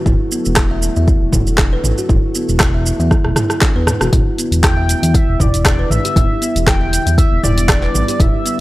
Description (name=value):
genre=afro house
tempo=118 BPM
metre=4/4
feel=swing 54% on 16ths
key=E minor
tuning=A4 = 440 Hz
part: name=ethereal airy pad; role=sustained chords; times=0.0-8.6 s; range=D3 to A4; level=-28 LUFS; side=equal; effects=ensemble chorus, built-in reverb, phaser, sidechain pumping
part: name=kalimba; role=arpeggios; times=0.1-8.6 s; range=B3 to E5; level=-22 LUFS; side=equal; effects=sidechain pumping, analog delay
part: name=smooth synth bass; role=bass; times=0.1-8.3 s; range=E1 to E2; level=-17 LUFS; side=equal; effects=sidechain pumping
part: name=deep house drum kit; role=drums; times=0.1-8.6 s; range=handclaps, hi-hat, rim click, shaker, toms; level=-18 LUFS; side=equal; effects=none
part: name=electronic kick drum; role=drums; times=0.1-8.3 s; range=none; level=-15 LUFS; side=equal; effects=none
part: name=expressive synth lead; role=melody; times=4.6-8.6 s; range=D5 to G5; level=-21 LUFS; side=equal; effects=analog chorus, analog delay
room=little or no reverb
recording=dry, gritty hardware recording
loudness=-12 LUFS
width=side -18 dB against mid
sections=0.0-8.6 A section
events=drum fill 3.1-4.1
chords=0.0 D/E; 4.1 Em7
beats=| 0.06 0.57 1.08 1.59 | 2.10 2.60 3.11 3.62 | 4.13 4.64 5.15 5.65 | 6.16 6.67 7.18 7.69 | 8.20